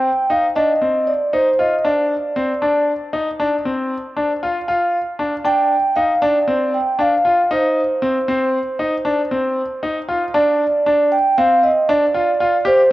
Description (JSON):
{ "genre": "progressive instrumental, progressive", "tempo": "233 BPM (eighths)", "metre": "11/8", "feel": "straight", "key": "C minor", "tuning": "A4 = 441 Hz", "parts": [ { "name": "vibraphone with soft mallets", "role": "melody", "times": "0.0-12.9 s", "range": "C5 to G5", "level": "-16 LUFS", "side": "right 1 dB", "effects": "cassette tape" }, { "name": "bright grand piano", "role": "arpeggios", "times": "0.0-12.8 s", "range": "C4 to G4", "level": "-19 LUFS", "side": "left 1 dB", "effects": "cassette tape" } ], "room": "wet spring reverb, RT60 2.3 s", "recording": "home recording on cassette", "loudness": "-15 LUFS", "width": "side -16 dB against mid", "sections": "0.0-10.3 A section; 10.3-12.9 B section", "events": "none", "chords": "0.0 Cmadd9; 10.3 N.C." }